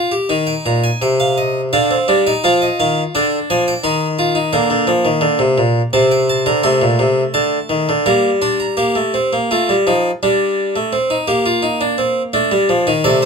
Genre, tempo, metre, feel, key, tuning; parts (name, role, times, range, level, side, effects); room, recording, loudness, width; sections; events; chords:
classical, baroque-style 3-part fugue for harpsichord; 84 BPM; 3/4; straight; C minor; A4 = 441 Hz
harpsichord; solo; 0.0-13.3 s; Bb2 to C6; -13 LUFS; equal
moderate studio ambience, RT60 0.5 s; minimal, uncompressed stereo recording; -13 LUFS; side -5 dB against mid
0.3-8.8 A section; 8.8-13.3 B section
0.3 Cm; 1.7 Dmadd11; 2.4 G5; 3.8 Cm/Eb; 4.5 Bbadd9; 5.9 Bbmaj13/C; 6.7 D5; 8.1 Gm; 8.8 Bb5; 10.2 G5; 10.9 Cm; 12.4 Ebmaj9#11